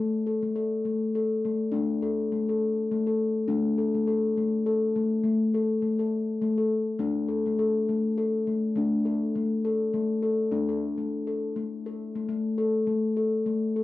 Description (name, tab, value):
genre	world meditative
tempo	102 BPM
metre	3/4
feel	swing 56% on 16ths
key	unclear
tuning	A4 = 439 Hz
part	steel tongue drum	solo	0.0-13.8 s	A3 to A4	-24 LUFS	left 2 dB	cassette tape
room	wet studio reverb, RT60 0.6 s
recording	home recording on cassette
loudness	-24 LUFS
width	side -16 dB against mid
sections	0.0-8.8 A section; 8.8-13.8 B section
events	none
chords	0.0 N.C.; 1.7 D5; 5.2 N.C.; 7.0 D5; 12.3 N.C.